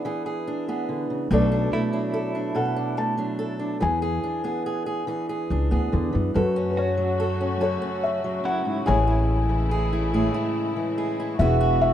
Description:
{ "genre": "acoustic folk-pop ballad", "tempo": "71 BPM", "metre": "3/4", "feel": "straight", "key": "unclear", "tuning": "A4 = 440 Hz", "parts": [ { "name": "felt-muted upright piano", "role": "melody", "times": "0.0-11.9 s", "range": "F#4 to A5", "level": "-28 LUFS", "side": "left 3 dB", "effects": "plate reverb" }, { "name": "fingerpicked steel-string acoustic guitar", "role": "accompaniment", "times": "0.0-11.9 s", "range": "F#2 to A4", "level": "-25 LUFS", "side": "right 1 dB", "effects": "plate reverb" }, { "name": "direct-recorded clean electric guitar", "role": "arpeggios", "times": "0.0-9.3 s", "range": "E4 to F#4", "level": "-34 LUFS", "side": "right 4 dB", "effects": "tremolo, plate reverb" }, { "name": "upright bass", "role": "bass", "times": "1.3-11.9 s", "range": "E1 to F#2", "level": "-23 LUFS", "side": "left 1 dB", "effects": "none" }, { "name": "warm studio string section", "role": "sustained chords", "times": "6.3-11.9 s", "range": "C#3 to F#4", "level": "-33 LUFS", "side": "left 2 dB", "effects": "plate reverb" } ], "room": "light reverb", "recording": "rough home demo mix", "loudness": "-22 LUFS", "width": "side -10 dB against mid", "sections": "0.0-6.4 A section; 6.4-11.9 B section", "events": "none", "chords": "0.0 E7; 1.3 Bm7; 3.8 E7; 6.4 F#m; 8.9 Amaj7; 11.4 Eadd9", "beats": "0.47 | 1.31 2.15 2.99 | 3.83 4.67 5.51 | 6.35 7.19 8.04 | 8.87 9.71 10.55 | 11.39" }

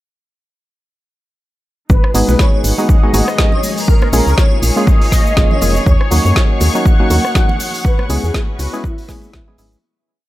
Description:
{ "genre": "deep house", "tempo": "121 BPM", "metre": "4/4", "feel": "swing 57% on 16ths", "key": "G# minor", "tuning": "A4 = 440 Hz", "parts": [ { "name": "mellow horn-like synth lead", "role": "melody", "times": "1.9-9.7 s", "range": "E4 to F#5", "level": "-23 LUFS", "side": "equal", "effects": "ensemble chorus, vintage 12-bit sampler grit, tape echo" }, { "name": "dark analog pad", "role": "sustained chords", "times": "2.1-9.8 s", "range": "G#3 to C#5", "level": "-26 LUFS", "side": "left 1 dB", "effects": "chorus, vintage 12-bit sampler grit, sidechain pumping" }, { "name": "woody FM bass", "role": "bass", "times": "1.9-9.8 s", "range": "E#1 to F#2", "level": "-14 LUFS", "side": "equal", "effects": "sidechain pumping" }, { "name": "deep house drum kit", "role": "drums", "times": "1.9-9.8 s", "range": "hi-hat, rim click, shaker, snare drum", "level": "-21 LUFS", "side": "equal", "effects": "none" }, { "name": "electronic kick drum", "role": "drums", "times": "1.9-9.4 s", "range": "none", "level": "-12 LUFS", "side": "equal", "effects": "none" }, { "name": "congas", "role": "percussion", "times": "1.9-9.8 s", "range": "none", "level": "-27 LUFS", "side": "right 2 dB", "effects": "none" }, { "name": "muted studio string section", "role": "texture", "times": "1.9-9.8 s", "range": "C#4 to F#5", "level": "-25 LUFS", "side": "left 2 dB", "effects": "sidechain pumping" }, { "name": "percussive organ stab", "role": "stabs", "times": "2.1-9.8 s", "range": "F#3 to B4", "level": "-19 LUFS", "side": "equal", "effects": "chorus, sidechain pumping" }, { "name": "airy dreamy lead", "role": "melody", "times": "2.4-5.9 s", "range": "A#4 to C#5", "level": "-26 LUFS", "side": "equal", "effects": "chorus, tape echo" }, { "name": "dark studio violin section", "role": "texture", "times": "5.9-9.8 s", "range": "C#6", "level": "-30 LUFS", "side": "left 4 dB", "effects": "sidechain pumping" } ], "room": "digital ambience", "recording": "none", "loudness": "-11 LUFS", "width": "side -16 dB against mid", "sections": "1.9-9.8 drop", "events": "drop 1.9-9.8; fade-out 7.2-9.8", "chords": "1.9 G#m7; 3.6 A#m7; 5.9 D#m7; 7.8 C#m7", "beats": "| 1.90 2.39 2.89 3.39 | 3.88 4.38 4.87 5.37 | 5.87 6.36 6.86 7.35 | 7.85 8.35 8.84 9.34" }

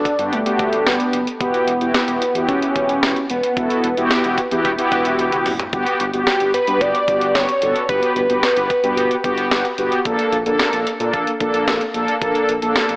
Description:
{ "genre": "synth-pop", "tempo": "111 BPM", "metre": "4/4", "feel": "straight", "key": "unclear", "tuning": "A4 = 440 Hz", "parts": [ { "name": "fat analog lead", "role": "melody", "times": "0.0-9.7 s", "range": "A3 to D5", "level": "-19 LUFS", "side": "equal", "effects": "analog delay" }, { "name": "mellow synth brass", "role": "accompaniment", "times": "0.0-13.0 s", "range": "Bb3 to A4", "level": "-19 LUFS", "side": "equal", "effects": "chorus" }, { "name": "smooth synth bass", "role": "bass", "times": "0.0-13.0 s", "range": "E1 to Bb2", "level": "-29 LUFS", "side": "equal", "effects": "none" }, { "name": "clean 12-bit digital drum machine", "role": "drums", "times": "0.1-13.0 s", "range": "hi-hat, kick drum, snare drum, toms", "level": "-22 LUFS", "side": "equal", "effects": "none" } ], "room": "moderate concert hall reverb, RT60 2.2 s", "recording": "AM radio sound", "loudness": "-15 LUFS", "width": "side -24 dB against mid", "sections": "0.0-5.7 A section; 5.7-13.0 B section", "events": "drum fill 5.2-5.7", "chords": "0.0 Gmaj7; 1.4 Emadd9; 5.7 Gmaj7; 10.1 Bbmaj7", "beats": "0.32 0.86 | 1.41 1.95 2.49 3.03 | 3.57 4.11 4.65 5.19 | 5.73 6.27 6.81 7.35 | 7.89 8.43 8.97 9.51 | 10.05 10.59 11.13 11.68 | 12.22 12.76" }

